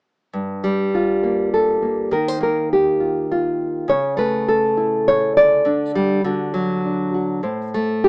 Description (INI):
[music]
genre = folk, solo fingerstyle acoustic guitar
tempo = 102 BPM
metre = 3/4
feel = straight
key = G minor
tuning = A4 = 439 Hz
[part]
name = nylon-string guitar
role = solo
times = 0.3-8.1 s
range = G2 to D5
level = -16 LUFS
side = equal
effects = none
[sound]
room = light reverb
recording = band playing live in one room, small speaker sound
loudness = -16 LUFS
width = side -30 dB against mid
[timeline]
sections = 0.3-8.1 A section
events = none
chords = 0.3 Gm7; 2.1 Ebsus2; 3.9 A/C#; 5.7 Dsus4; 6.2 D; 7.4 Am